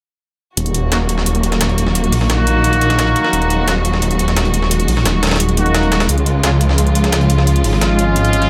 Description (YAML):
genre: dark technical drum and bass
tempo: 174 BPM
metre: 4/4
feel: straight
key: Eb minor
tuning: A4 = 440 Hz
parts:
  - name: warm studio string section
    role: sustained chords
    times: 0.6-8.5 s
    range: Db3 to Gb4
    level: -22 LUFS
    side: equal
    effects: none
  - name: snarling distorted saw bass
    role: bass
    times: 0.6-8.5 s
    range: Eb1 to Db2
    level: -18 LUFS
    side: equal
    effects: distortion, tube saturation
  - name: breakbeat sampler-style drum kit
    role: drums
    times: 0.6-8.5 s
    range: hi-hat, snare drum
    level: -24 LUFS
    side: equal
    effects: high-pass filter on hats, high-pass filter on snare
  - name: electronic hi-hat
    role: drums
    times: 0.6-8.5 s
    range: none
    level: -25 LUFS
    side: equal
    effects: overdrive
  - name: warm brass ensemble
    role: stabs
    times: 0.9-8.5 s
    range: Ab3 to Gb4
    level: -21 LUFS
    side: equal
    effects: low-pass filter, dub echo
room: light reverb, digital ambience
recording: none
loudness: -15 LUFS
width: mono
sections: 0.6-8.5 A section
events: none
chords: 0.6 Ebm; 6.1 Db